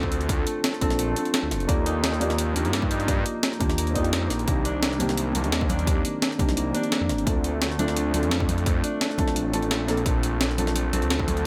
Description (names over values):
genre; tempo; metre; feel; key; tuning
liquid drum and bass; 172 BPM; 4/4; straight; C dorian; A4 = 440 Hz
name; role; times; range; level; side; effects
felt-muted upright piano; accompaniment; 0.0-11.5 s; Eb3 to D5; -30 LUFS; equal; dub echo
concert harp; arpeggios; 0.0-11.5 s; A3 to Eb4; -33 LUFS; equal; dub echo
swelling detuned saw bass; bass; 0.0-11.5 s; F1 to G2; -30 LUFS; equal; none
electronic kick drum; drums; 0.0-11.3 s; none; -29 LUFS; equal; overdrive, studio reverb
breakbeat sampler-style drum kit; drums; 0.1-11.4 s; hi-hat, snare drum; -30 LUFS; equal; studio reverb
swell; sound effects; 3.9-4.5 s; none; -41 LUFS; equal; none
congas; percussion; 5.0-11.4 s; none; -37 LUFS; equal; none
room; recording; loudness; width
light reverb, small room ambience; none; -24 LUFS; mono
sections
0.0-11.5 A section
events
none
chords
0.0 Bbmaj9; 1.7 Ebmaj9; 4.5 Cm9; 7.3 Dm7; 9.9 Bbmaj9